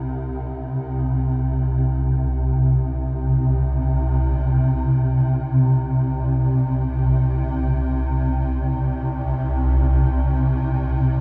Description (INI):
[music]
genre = dark ambient drone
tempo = free time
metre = none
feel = none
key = unclear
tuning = A4 = 437 Hz
[part]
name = swarming drone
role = solo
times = 0.0-11.2 s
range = C2 to C3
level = -21 LUFS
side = equal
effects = built-in reverb
[sound]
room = wet cathedral reverb, RT60 5.8 s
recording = in a vast, echoing space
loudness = -21 LUFS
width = mono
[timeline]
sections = 0.0-1.5 A section; 1.5-11.2 B section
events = none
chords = none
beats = free time